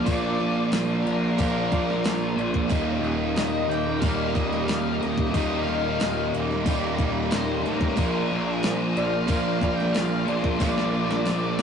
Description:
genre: rock, shoegaze and dream pop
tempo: 91 BPM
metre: 4/4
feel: straight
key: Eb major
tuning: A4 = 439 Hz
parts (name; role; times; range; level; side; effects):
- octave-fuzz lead guitar; melody; 0.0-11.6 s; Bb4 to G5; -34 LUFS; left 2 dB; distortion
- string machine, violins; sustained chords; 0.0-11.6 s; F4 to C6; -34 LUFS; left 1 dB; ensemble chorus
- picked twelve-string acoustic guitar; arpeggios; 0.0-11.6 s; Eb2 to F4; -31 LUFS; left 2 dB; digital delay
- overdriven electric guitar; riff; 0.0-11.6 s; Eb2 to F4; -28 LUFS; right 3 dB; none
- thick fuzz guitar; riff; 0.0-11.6 s; Eb2 to Bb3; -28 LUFS; left 1 dB; distortion
- fuzz picked electric bass; bass; 0.0-11.6 s; Eb1 to Bb1; -31 LUFS; equal; overdrive
- crisp 8-bit digital drum machine; drums; 0.1-11.6 s; hi-hat, kick drum, snare drum; -27 LUFS; equal; none
room: wet small room reverb, RT60 0.5 s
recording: rough rehearsal-room recording, warm saturation, nothing above 10.7 kHz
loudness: -22 LUFS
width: side -7 dB against mid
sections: 0.0-11.6 A section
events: drum fill 10.6-11.6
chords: 0.0 Bb; 2.7 Eb; 8.0 Bb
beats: | 0.07 0.73 1.39 2.05 | 2.71 3.37 4.03 4.68 | 5.34 6.00 6.66 7.32 | 7.97 8.63 9.29 9.95 | 10.61 11.27

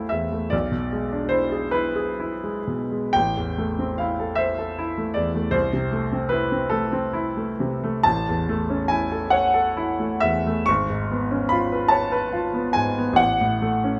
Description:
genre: classical, romantic nocturne for solo piano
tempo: 40-53 BPM (dotted quarters)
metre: 6/8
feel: rubato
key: A minor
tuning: A4 = 440 Hz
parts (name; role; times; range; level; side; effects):
- clear grand piano; solo; 0.0-14.0 s; G#1 to C#6; -23 LUFS; equal; none
room: moderate large studio reverb, RT60 1.3 s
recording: close, detailed microphones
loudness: -23 LUFS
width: mono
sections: 0.0-14.0 A section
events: none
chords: 0.0 Am; 0.5 E7/B; 3.1 Am; 5.5 Am/C; 8.1 A; 10.7 C#7/G#; 13.2 F#m/A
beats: | 0.53 1.74 | 3.15 4.39 | 5.54 6.72 | 8.06 9.33 | 10.68 11.92 | 13.18

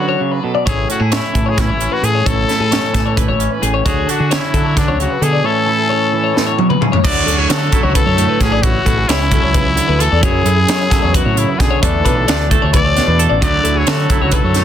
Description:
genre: math rock and midwest emo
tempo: 263 BPM (eighths)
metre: 7/8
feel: straight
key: unclear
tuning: A4 = 440 Hz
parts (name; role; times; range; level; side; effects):
- growling trumpet; melody; 0.0-14.6 s; D4 to D5; -18 LUFS; left 3 dB; none
- twangy electric guitar; accompaniment; 0.0-14.6 s; F#2 to A4; -20 LUFS; right 7 dB; none
- twelve-string electric guitar; arpeggios; 0.0-14.6 s; G#4 to D5; -20 LUFS; left 10 dB; plate reverb
- growling fingered electric bass; bass; 0.7-14.6 s; A1 to F#3; -17 LUFS; equal; overdrive
- crisp fusion drum kit; drums; 0.7-14.6 s; crash cymbal, hi-hat, kick drum, snare drum, toms; -16 LUFS; equal; none
room: light reverb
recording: dense, heavily limited modern master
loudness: -12 LUFS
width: side -10 dB against mid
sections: 0.0-7.0 A section; 7.0-14.6 B section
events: drum fill 6.4-7.0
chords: 0.0 Dmaj7; 0.7 Amaj7; 3.9 Dmaj7; 5.5 Amaj7; 7.0 Dmaj9; 10.2 F#m9; 11.8 E7sus4; 13.4 Dmaj9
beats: 0.20 0.43 | 0.66 0.89 1.11 1.34 1.57 1.80 2.03 | 2.25 2.48 2.71 2.94 3.17 3.40 3.62 | 3.85 4.08 4.31 4.54 4.76 4.99 5.22 | 5.45 5.68 5.91 6.13 6.36 6.59 6.82 | 7.05 7.28 7.50 7.73 7.96 8.19 8.41 | 8.64 8.87 9.10 9.32 9.55 9.78 10.01 | 10.23 10.46 10.69 10.92 11.14 11.37 11.60 | 11.83 12.05 12.28 12.51 12.74 12.96 13.19 | 13.42 13.64 13.87 14.10 14.33 14.55

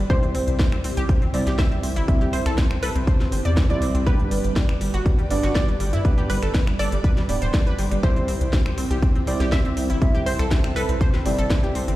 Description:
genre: progressive house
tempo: 121 BPM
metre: 4/4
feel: straight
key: unclear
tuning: A4 = 440 Hz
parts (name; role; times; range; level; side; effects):
- airy breathy pad; sustained chords; 0.0-12.0 s; C3 to D5; -32 LUFS; right 1 dB; chorus, phaser, sidechain pumping
- analog pluck; arpeggios; 0.0-12.0 s; G3 to D5; -30 LUFS; equal; chorus, sidechain pumping, ping-pong delay
- deep mellow chord stab; stabs; 0.0-12.0 s; G2 to E5; -28 LUFS; right 1 dB; chorus, sidechain pumping, ping-pong delay
- round analog bass; bass; 0.0-12.0 s; D1 to G2; -24 LUFS; equal; sidechain pumping
- wide unison pluck; melody; 0.1-11.2 s; B4 to E5; -33 LUFS; equal; ping-pong delay
- electronic kick drum; drums; 0.1-11.6 s; none; -20 LUFS; equal; studio reverb
- house drum kit; drums; 0.1-12.0 s; finger snaps, hi-hat, snare drum; -31 LUFS; equal; sidechain pumping on hats, studio reverb, sidechain pumping on cymbals
room: little or no reverb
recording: played on a big sound system in a bare room, large studio reverb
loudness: -19 LUFS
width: side -16 dB against mid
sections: 0.0-12.0 A section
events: none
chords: 0.1 C; 4.1 G; 8.0 C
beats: | 0.10 0.59 1.09 1.59 | 2.08 2.58 3.07 3.57 | 4.07 4.56 5.06 5.55 | 6.05 6.54 7.04 7.54 | 8.03 8.53 9.03 9.52 | 10.02 10.51 11.01 11.50

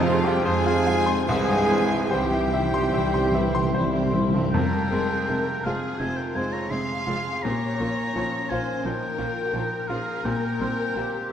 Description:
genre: classical, romantic movement for piano and orchestra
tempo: 71-87 BPM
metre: 4/4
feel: rubato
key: F minor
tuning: A4 = 439 Hz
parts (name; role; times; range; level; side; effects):
- bright baby grand piano; melody; 0.0-11.3 s; C2 to C6; -27 LUFS; left 1 dB; none
- rich chamber violin section; melody; 0.0-11.0 s; E4 to Ab5; -34 LUFS; left 4 dB; none
- clear clarinet; second line; 0.0-4.1 s; F4 to Ab4; -35 LUFS; equal; none
- concert flute; second line; 0.0-4.1 s; F5 to Ab5; -34 LUFS; equal; none
- rich chamber violin section; second line; 0.0-11.3 s; C4 to F5; -34 LUFS; left 4 dB; none
- warm oboe; second line; 0.0-11.3 s; C5 to C6; -32 LUFS; equal; none
- dark bassoon; accompaniment; 0.0-4.5 s; E3 to G3; -33 LUFS; right 2 dB; none
- rich chamber viola section; accompaniment; 0.0-11.0 s; F3 to Db4; -32 LUFS; right 1 dB; none
- dark French horn section; sustained chords; 0.0-4.1 s; C4 to C5; -33 LUFS; left 2 dB; none
- dark trombone section; sustained chords; 0.0-4.2 s; C3 to F3; -33 LUFS; right 2 dB; none
- warm trumpet section; stabs; 0.0-4.1 s; F4 to Ab4; -28 LUFS; right 3 dB; none
- dark studio cello section; bass; 0.0-11.3 s; Db4 to Bb4; -35 LUFS; right 1 dB; none
- rich studio double bass section; bass; 0.0-11.0 s; F1 to F2; -33 LUFS; right 3 dB; none
- timpani; percussion; 0.0-5.6 s; F2 to C3; -28 LUFS; left 1 dB; none
room: wet scoring stage reverb, RT60 1.6 s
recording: none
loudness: -22 LUFS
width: side -9 dB against mid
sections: 0.0-4.5 A section; 4.5-11.3 B section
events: timpani fill 1.3-4.5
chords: 0.0 Fm; 1.3 C; 4.5 Fm; 7.4 Bbm; 10.3 C7/Bb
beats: 0.45 | 1.28 2.12 2.95 3.75 | 4.54 5.29 6.00 6.71 | 7.44 8.16 8.86 9.55 | 10.26 10.96

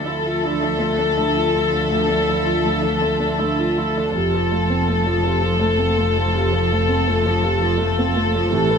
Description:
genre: neoclassical piano and strings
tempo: 82 BPM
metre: 3/4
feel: rubato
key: unclear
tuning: A4 = 441 Hz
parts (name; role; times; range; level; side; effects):
- warm chamber violin section; melody; 0.0-8.8 s; A4; -20 LUFS; left 4 dB; none
- dark cello; second line; 0.0-8.8 s; E3 to F3; -29 LUFS; right 5 dB; none
- dark viola; accompaniment; 0.0-8.8 s; C3 to F4; -25 LUFS; right 3 dB; none
- felt-muted upright piano; accompaniment; 0.0-8.8 s; D2 to F4; -27 LUFS; equal; none
- warm chamber string section; sustained chords; 0.0-8.8 s; A3 to E5; -30 LUFS; equal; none
- dark double bass; bass; 0.0-8.8 s; F1 to D2; -24 LUFS; equal; none
- vibraphone with medium mallets; arpeggios; 0.1-8.8 s; D4 to F5; -31 LUFS; right 6 dB; none
room: wet studio reverb, RT60 0.7 s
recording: band playing live in one room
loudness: -17 LUFS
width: side -6 dB against mid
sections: 0.0-8.8 A section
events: none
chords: 0.0 Dmadd9; 4.1 F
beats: 0.43 1.17 | 1.91 2.65 3.40 | 4.14 4.88 5.61 | 6.34 7.07 7.79 | 8.52

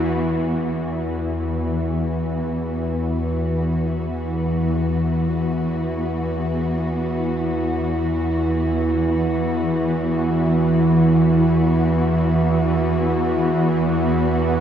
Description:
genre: dark ambient drone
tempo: free time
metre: none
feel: none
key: unclear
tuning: A4 = 436 Hz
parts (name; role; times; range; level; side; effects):
- dark symphonic cello section; sustained chords; 0.0-14.6 s; E3 to F#4; -26 LUFS; equal; none
- bowed-like drone; drone; 0.0-14.6 s; E2 to E3; -19 LUFS; equal; built-in reverb
room: wet huge ambient reverb, RT60 7.5 s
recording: dark, warm production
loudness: -18 LUFS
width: side -9 dB against mid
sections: 0.0-14.6 A section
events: fade-in on cello section 0.0-14.6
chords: 0.0 E5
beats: free time

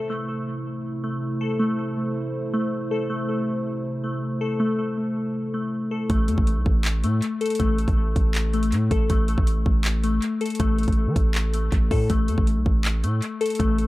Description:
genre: hip hop, trap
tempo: 160 BPM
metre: 4/4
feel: half-time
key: A minor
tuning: A4 = 439 Hz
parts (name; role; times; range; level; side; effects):
- dark analog pad; sustained chords; 0.0-6.1 s; C3 to C5; -30 LUFS; right 1 dB; lush chorus
- glassy digital keys; arpeggios; 0.0-13.9 s; A3 to A4; -26 LUFS; left 2 dB; chorus, low-pass filter, analog delay
- long sustained 808-style bass; bass; 6.1-13.9 s; A1 to E3; -23 LUFS; equal; none
- trap drum kit; drums; 6.1-13.9 s; handclaps, hi-hat, kick drum; -23 LUFS; equal; none
room: little or no reverb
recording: echo-heavy mix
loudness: -21 LUFS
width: side -18 dB against mid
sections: 0.1-6.1 A section; 6.1-13.9 B section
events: none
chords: 0.1 Am; 6.1 A5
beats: | 0.10 0.47 0.85 1.22 | 1.60 1.97 2.35 2.72 | 3.10 3.47 3.85 4.22 | 4.60 4.97 5.35 5.72 | 6.10 6.47 6.85 7.22 | 7.60 7.97 8.35 8.72 | 9.10 9.47 9.85 10.22 | 10.60 10.97 11.35 11.72 | 12.10 12.47 12.85 13.22 | 13.60

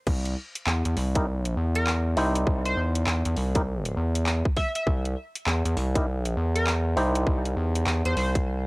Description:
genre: glitch hop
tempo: 100 BPM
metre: 4/4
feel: swing 62% on 16ths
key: unclear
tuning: A4 = 437 Hz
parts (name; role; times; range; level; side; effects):
- gritty driven synth bass; bass; 0.1-8.7 s; C2 to E2; -25 LUFS; equal; distortion
- drum and bass drum kit; drums; 0.1-8.4 s; crash cymbal, handclaps, hi-hat, snare drum; -31 LUFS; equal; overdrive, cassette tape
- electronic kick drum; drums; 0.1-8.4 s; none; -25 LUFS; equal; overdrive, cassette tape
- clav; stabs; 1.2-8.3 s; D#4 to C5; -29 LUFS; equal; auto-wah, sidechain pumping, cassette tape, analog delay
- sync lead; melody; 1.8-8.3 s; Bb4 to E5; -31 LUFS; equal; chorus, cassette tape, analog delay
room: digital ambience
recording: home recording on cassette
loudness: -23 LUFS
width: side -25 dB against mid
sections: 0.1-8.7 A section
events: drop 0.1-8.7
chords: 0.1 C(#9)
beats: | 0.07 0.67 1.27 1.87 | 2.47 3.07 3.67 4.27 | 4.87 5.47 6.07 6.67 | 7.27 7.87 8.47

